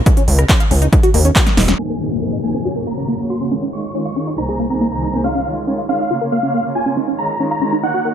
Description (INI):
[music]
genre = uplifting trance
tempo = 139 BPM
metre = 4/4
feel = straight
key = Db major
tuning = A4 = 440 Hz
[part]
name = tight sequenced synth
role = arpeggios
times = 0.1-8.1 s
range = Bb3 to F5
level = -21 LUFS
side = equal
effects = chorus, phaser, sidechain pumping, ping-pong delay
[part]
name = big-room dance drum kit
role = drums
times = 0.1-1.8 s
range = handclaps, hi-hat, rim click, snare drum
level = -18 LUFS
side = right 1 dB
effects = overdrive
[part]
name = electronic kick drum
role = drums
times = 0.1-1.4 s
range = none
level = -13 LUFS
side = equal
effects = overdrive
[part]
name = gritty driven synth bass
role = bass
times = 0.3-1.7 s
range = Eb1 to Eb2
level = -13 LUFS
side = equal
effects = sidechain pumping
[part]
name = big supersaw lead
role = melody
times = 1.8-8.1 s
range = F5 to Db6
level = -23 LUFS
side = equal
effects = sidechain pumping, low-pass filter, digital delay
[part]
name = muted studio string section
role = sustained chords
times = 1.8-8.1 s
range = C2 to Db5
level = -22 LUFS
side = right 2 dB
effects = sidechain pumping, low-pass filter
[part]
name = downlifter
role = sound effects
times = 1.8-5.2 s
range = none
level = -25 LUFS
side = left 4 dB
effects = none
[sound]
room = light reverb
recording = low-pass filter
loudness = -14 LUFS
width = side -9 dB against mid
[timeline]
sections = 0.0-1.8 A section; 1.8-8.1 B section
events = drum fill 1.5-1.8; filter sweep on supersaw synth 1.8-8.1; filter sweep on string section 1.8-8.1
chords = 0.1 N.C.; 0.9 Eb5; 1.8 Abadd9; 2.7 Gb; 3.5 Dbadd9; 4.4 Abadd9/C; 5.2 Dbadd9; 6.1 Bbm; 7.0 Dbadd9